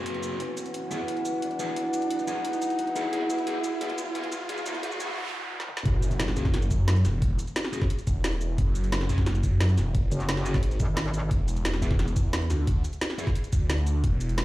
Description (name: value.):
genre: dark technical drum and bass.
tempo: 176 BPM.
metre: 4/4.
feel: straight.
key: unclear.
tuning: A4 = 440 Hz.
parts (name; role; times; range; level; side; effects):
dark analog pad; sustained chords; 0.0-5.8 s; E4 to G#5; -30 LUFS; equal; chorus, sidechain pumping.
fuzz guitar; stabs; 0.0-13.3 s; B3 to G#4; -35 LUFS; left 1 dB; distortion, low-pass filter, dub echo.
riser, noise sweep and impact; sound effects; 0.1-7.2 s; none; -34 LUFS; right 1 dB; none.
drum and bass drum kit; drums; 0.1-14.4 s; hi-hat, shaker, snare drum, toms; -33 LUFS; equal; overdrive.
phased detuned saw bass; bass; 5.9-14.4 s; E1 to F#2; -25 LUFS; equal; phaser, overdrive, sidechain pumping.
electronic kick drum; drums; 5.9-14.1 s; none; -26 LUFS; equal; overdrive.
metallic wobble bass; bass; 10.1-11.3 s; F#1 to G#1; -27 LUFS; equal; chorus.
room: light reverb.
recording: played on a big sound system in a bare room, large studio reverb, high-pass filter.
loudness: -24 LUFS.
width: side -16 dB against mid.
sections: 0.0-5.9 A section; 5.9-14.4 B section.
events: build-up 0.0-5.9; riser 0.1-5.2; filter sweep on distorted electric guitar 0.0-5.9; filter sweep 0.0-5.9; noise sweep 4.5-5.9; drum fill 5.6; drop 5.9-14.4; impact 5.9-7.2.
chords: 0.4 E; 5.9 F#sus2; 11.3 N.C..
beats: 0.06 | 0.40 0.74 1.08 1.42 | 1.76 2.11 2.45 2.79 | 3.13 3.47 3.81 4.15 | 4.49 4.83 5.17 5.51 | 5.86 6.20 6.54 6.88 | 7.22 7.56 7.90 8.24 | 8.58 8.92 9.27 9.61 | 9.95 10.29 10.63 10.97 | 11.31 11.65 11.99 12.33 | 12.67 13.02 13.36 13.70 | 14.04 14.38.